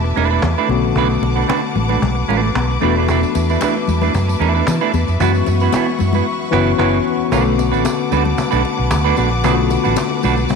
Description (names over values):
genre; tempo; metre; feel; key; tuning
disco; 113 BPM; 4/4; straight; B minor; A4 = 440 Hz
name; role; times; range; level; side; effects
mellow tine electric piano; accompaniment; 0.0-10.6 s; C#3 to F#4; -20 LUFS; left 10 dB; none
semi-hollow electric guitar; accompaniment; 0.0-10.5 s; A3 to B4; -20 LUFS; right 12 dB; none
clear studio string section; sustained chords; 0.0-10.6 s; B4 to D6; -24 LUFS; left 3 dB; none
fingered electric bass; bass; 0.0-10.4 s; E1 to E3; -18 LUFS; right 1 dB; none
congas; percussion; 0.2-10.6 s; none; -26 LUFS; left 12 dB; none
cajon; drums; 0.4-10.6 s; none; -26 LUFS; right 1 dB; none
tambourine; percussion; 3.1-10.6 s; none; -36 LUFS; right 14 dB; none
room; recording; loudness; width
moderate echo chamber reverb, RT60 1.9 s, studio ambience; 1960s-style stereo with parts hard left and right; -14 LUFS; side -5 dB against mid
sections
0.0-7.3 A section; 7.3-10.6 B section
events
band accent 6.3-7.3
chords
0.0 E7sus4; 0.7 Bm7; 2.8 E7sus4; 5.2 F#7sus4; 7.3 Bm7